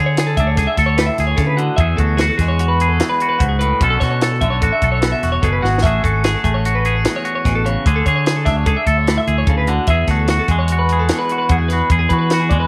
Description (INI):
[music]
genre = math rock and midwest emo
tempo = 148 BPM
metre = 5/4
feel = straight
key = unclear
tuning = A4 = 440 Hz
[part]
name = twangy electric guitar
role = accompaniment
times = 0.0-12.7 s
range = E2 to A4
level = -22 LUFS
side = equal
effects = lush chorus
[part]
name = twelve-string electric guitar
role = arpeggios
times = 0.0-12.7 s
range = F#4 to E5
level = -23 LUFS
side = equal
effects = none
[part]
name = fingered electric bass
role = bass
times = 0.0-12.7 s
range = E1 to E3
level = -20 LUFS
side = equal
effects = none
[part]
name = compact cocktail drum kit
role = drums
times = 0.2-12.6 s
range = hi-hat, kick drum, snare drum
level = -22 LUFS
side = equal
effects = none
[sound]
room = small room ambience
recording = none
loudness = -16 LUFS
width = mono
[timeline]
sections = 0.0-12.7 A section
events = drum fill 5.6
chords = 0.0 Dmaj9#11; 3.8 Bm9; 5.8 Amaj13; 7.9 Dmaj9#11; 9.9 E9